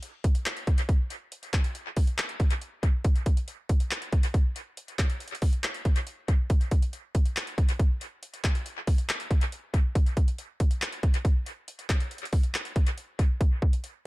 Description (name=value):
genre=hip hop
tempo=139 BPM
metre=4/4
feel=half-time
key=none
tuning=none
part: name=trap drum kit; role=drums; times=0.0-13.9 s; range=handclaps, hi-hat, kick drum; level=-24 LUFS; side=equal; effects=dub echo
room=little or no reverb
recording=echo-heavy mix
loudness=-25 LUFS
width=side -21 dB against mid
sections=0.0-13.4 A section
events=none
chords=none